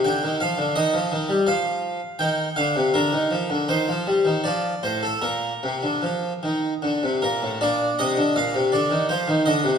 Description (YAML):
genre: classical, baroque-style suite movement for harpsichord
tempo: 74-86 BPM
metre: 3/4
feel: rubato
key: Bb major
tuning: A4 = 440 Hz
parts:
  - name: harpsichord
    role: solo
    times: 0.0-9.8 s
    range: A2 to G5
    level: -20 LUFS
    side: equal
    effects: none
room: wet recital hall reverb, RT60 1.6 s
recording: none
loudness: -20 LUFS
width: side -7 dB against mid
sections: 0.0-7.6 A section; 7.6-9.8 B section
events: none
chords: 0.1 Dmadd11; 0.8 Eb; 2.2 F5/Eb; 2.9 Bb/D; 3.7 Cm/Eb; 4.4 F; 5.2 Bb; 9.1 F5